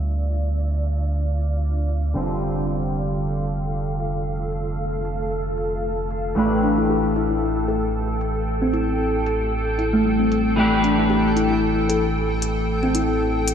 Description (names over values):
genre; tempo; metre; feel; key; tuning
organic downtempo; 114 BPM; 4/4; swing 55% on 16ths; A minor; A4 = 437 Hz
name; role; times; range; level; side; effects
electric guitar at the edge of break-up; accompaniment; 0.0-13.5 s; D3 to B4; -26 LUFS; left 1 dB; analog chorus, ping-pong delay
granular cloud pad; sustained chords; 0.0-13.5 s; A4 to D6; -27 LUFS; right 1 dB; built-in reverb
warm sub bass; bass; 0.0-13.5 s; F1 to D2; -25 LUFS; right 1 dB; tube saturation
electronic hi-hat; drums; 0.3-13.5 s; none; -29 LUFS; left 3 dB; none
kalimba; arpeggios; 6.4-13.0 s; G3 to A4; -22 LUFS; left 1 dB; ping-pong delay
room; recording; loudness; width
wet lush hall reverb, RT60 2.0 s; bright 1980s-style digital production, low-pass filter; -19 LUFS; side -8 dB against mid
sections
0.0-13.5 A section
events
filter sweep 0.0-13.5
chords
0.0 Dm; 2.2 F; 6.4 A7(no3)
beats
| 0.05 0.58 1.11 1.63 | 2.16 2.69 3.21 3.74 | 4.26 4.79 5.32 5.84 | 6.37 6.89 7.42 7.95 | 8.47 9.00 9.53 10.05 | 10.58 11.11 11.63 12.16 | 12.69 13.21